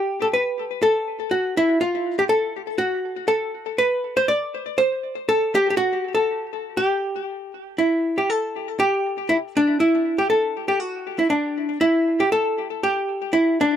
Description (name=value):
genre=alpine folk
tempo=120 BPM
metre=2/4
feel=swing 54% on 8ths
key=unclear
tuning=A4 = 440 Hz
part: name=archtop guitar, miked and amplified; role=solo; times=0.0-13.8 s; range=D4 to D5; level=-19 LUFS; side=equal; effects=ping-pong delay
room=moderate booth ambience, RT60 0.2 s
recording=none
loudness=-19 LUFS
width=side -9 dB against mid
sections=0.0-7.8 A section; 7.8-13.8 B section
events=none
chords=none